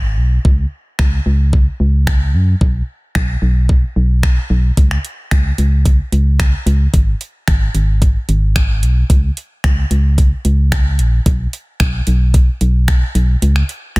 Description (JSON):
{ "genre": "dance-pop", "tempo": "111 BPM", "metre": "4/4", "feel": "straight", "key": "unclear", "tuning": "A4 = 440 Hz", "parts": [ { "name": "organ-like FM bass", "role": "bass", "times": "0.0-14.0 s", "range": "G#1 to F#2", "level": "-13 LUFS", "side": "equal", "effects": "sidechain pumping" }, { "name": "smooth R&B drum kit", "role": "drums", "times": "0.5-14.0 s", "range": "finger snaps, hi-hat, kick drum", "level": "-15 LUFS", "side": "equal", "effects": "soft clipping on snare" } ], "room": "little or no reverb", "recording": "dense, heavily limited modern master", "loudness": "-12 LUFS", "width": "side -24 dB against mid", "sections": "0.0-14.0 A section", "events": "kick muted 13.4-14.0", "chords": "none", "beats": "| 0.45 0.99 1.53 2.07 | 2.61 3.15 3.69 4.23 | 4.77 5.31 5.85 6.39 | 6.93 7.48 8.02 8.56 | 9.10 9.64 10.18 10.72 | 11.26 11.80 12.34 12.88 | 13.42 13.96" }